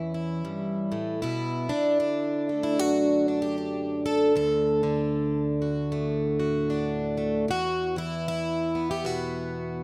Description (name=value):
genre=folk, solo fingerstyle acoustic guitar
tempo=77 BPM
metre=4/4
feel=swing 61% on 8ths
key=D major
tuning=A4 = 440 Hz
part: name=picked plugged-in twelve-string acoustic guitar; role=solo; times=0.0-9.8 s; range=D2 to A4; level=-24 LUFS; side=equal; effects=none
room=little or no reverb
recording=recorded outdoors, with no room sound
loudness=-24 LUFS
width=side -27 dB against mid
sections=0.0-9.8 A section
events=none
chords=0.0 A; 1.2 Bm7; 4.4 D; 7.5 Esus2